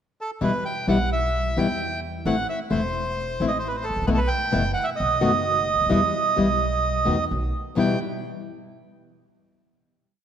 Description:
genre	tango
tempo	131 BPM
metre	4/4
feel	rubato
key	E harmonic minor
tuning	A4 = 440 Hz
part	bandoneon	melody	0.2-8.0 s	A4 to G5	-24 LUFS	right 3 dB	none
part	nylon-string guitar	accompaniment	0.4-8.0 s	E2 to F#4	-25 LUFS	left 3 dB	none
part	upright bass	bass	0.4-8.0 s	E1 to E2	-28 LUFS	right 1 dB	none
room	moderate concert hall reverb, RT60 2.0 s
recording	none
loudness	-21 LUFS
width	side -9 dB against mid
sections	0.0-0.4 pickup bar; 0.4-7.8 A section; 7.8-9.6 final chord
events	none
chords	0.4 Em; 2.3 Am; 4.1 B7sus4; 5.0 B; 5.9 E5; 7.3 N.C.; 7.8 Em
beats	| 0.41 0.88 1.34 1.80 | 2.26 2.72 3.17 3.63 | 4.08 4.54 5.00 5.46 | 5.91 6.37 6.84 7.30 | 7.77

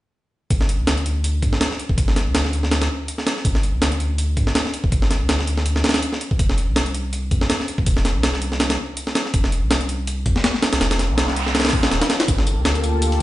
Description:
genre	drum and bass, jungle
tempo	163 BPM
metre	4/4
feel	swing 55% on 16ths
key	G minor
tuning	A4 = 440 Hz
part	saturated sub bass	bass	0.5-13.2 s	D1 to G2	-22 LUFS	equal	none
part	breakbeat sampler-style drum kit	drums	0.5-13.2 s	hi-hat, kick drum, snare drum	-19 LUFS	equal	studio reverb
part	noise sweep	sound effects	11.1-12.3 s	none	-27 LUFS	right 1 dB	none
part	lush unison pad	sustained chords	12.4-13.2 s	Bb3 to A4	-24 LUFS	left 1 dB	chorus, phaser, vintage 12-bit sampler grit
part	dusty soul sampler-style drum kit	drums	12.3-13.2 s	hi-hat, snare drum, tambourine	-31 LUFS	left 6 dB	high-pass filter on perc, studio reverb, high-pass filter on snare, high-pass filter on hats
room	light reverb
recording	played on a big sound system in a bare room, stone room reverb, nothing above 10.5 kHz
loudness	-18 LUFS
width	side -16 dB against mid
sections	0.5-13.2 A section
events	noise sweep 11.1-12.3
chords	0.5 G5; 6.4 F5; 12.3 Gm9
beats	| 0.51 0.87 1.24 1.61 | 1.98 2.35 2.71 3.08 | 3.45 3.82 4.19 4.55 | 4.92 5.29 5.66 6.03 | 6.40 6.76 7.13 7.50 | 7.87 8.24 8.60 8.97 | 9.34 9.71 10.08 10.45 | 10.81 11.18 11.55 11.92 | 12.29 12.65 13.02

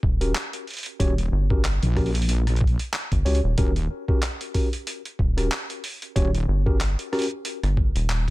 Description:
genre	glitch hop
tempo	93 BPM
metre	4/4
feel	swing 57% on 16ths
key	unclear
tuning	A4 = 440 Hz
part	rubbery square bass	bass	0.0-8.3 s	Eb1 to Db2	-22 LUFS	equal	none
part	electronic kick drum	drums	0.0-8.3 s	none	-23 LUFS	equal	none
part	mellow tine electric piano	stabs	0.2-7.3 s	Db4 to Db5	-29 LUFS	left 1 dB	sidechain pumping, ping-pong delay
part	boom bap sampler-style drum kit	drums	0.2-8.3 s	handclaps, hi-hat, rim click	-30 LUFS	equal	none
part	wobble bass	bass	1.0-6.5 s	Eb1 to Bb1	-22 LUFS	equal	chorus, tube saturation
room	digital ambience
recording	none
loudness	-21 LUFS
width	side -19 dB against mid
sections	0.0-8.3 A section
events	none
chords	0.0 Eb7#9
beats	0.35 | 1.00 1.64 2.29 2.93 | 3.58 4.22 4.87 5.51 | 6.16 6.80 7.45 8.10

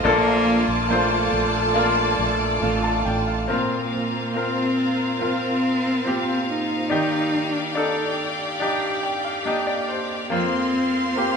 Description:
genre	pop ballad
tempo	70 BPM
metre	4/4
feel	straight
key	Bb major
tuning	A4 = 440 Hz
part	bright concert grand piano	accompaniment	0.0-11.4 s	Bb2 to A5	-24 LUFS	left 2 dB	none
part	bright studio string section	sustained chords	0.0-11.4 s	Bb3 to C6	-25 LUFS	left 1 dB	none
part	fingerpicked steel-string acoustic guitar	arpeggios	0.0-11.4 s	F2 to G4	-29 LUFS	right 5 dB	none
part	fretless electric bass	bass	0.0-3.5 s	A1 to Bb1	-27 LUFS	equal	none
part	warm cello	melody	0.1-11.4 s	Bb3 to Eb4	-24 LUFS	equal	none
room	wet large studio reverb, RT60 1.4 s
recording	band playing live in one room, nothing above 10.7 kHz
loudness	-20 LUFS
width	side -5 dB against mid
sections	0.0-3.5 A section; 3.5-11.4 B section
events	grand piano fill 8.6-10.3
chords	0.0 Bbmaj7; 3.5 Bbsus2; 6.9 Ebmaj7; 10.3 Bbsus2/F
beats	| 0.04 0.90 1.75 2.62 | 3.49 4.35 5.21 6.06 | 6.91 7.76 8.61 9.46 | 10.31 11.16

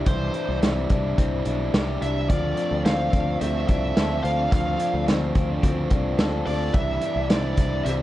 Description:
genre	jangly indie pop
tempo	108 BPM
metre	4/4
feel	straight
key	unclear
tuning	A4 = 439 Hz
part	biting overdriven guitar	accompaniment	0.0-8.0 s	C3 to F4	-30 LUFS	right 5 dB	none
part	electric guitar through a small old amp	arpeggios	0.0-8.0 s	E3 to A4	-28 LUFS	left 5 dB	spring reverb, tape echo
part	biting lead guitar	melody	0.1-7.9 s	C5 to F5	-29 LUFS	right 1 dB	overdrive
part	picked electric bass	bass	0.1-8.0 s	B1 to D2	-27 LUFS	equal	none
part	vintage drum kit	drums	0.1-8.0 s	hi-hat, kick drum, snare drum	-24 LUFS	equal	none
room	moderate studio reverb, RT60 0.5 s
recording	dark, warm production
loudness	-20 LUFS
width	side -14 dB against mid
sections	0.0-8.0 A section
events	none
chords	0.0 Cadd9; 2.3 Dm7; 6.7 Cadd9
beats	| 0.07 0.62 1.18 1.74 | 2.30 2.85 3.41 3.96 | 4.52 5.08 5.63 6.19 | 6.75 7.30 7.86

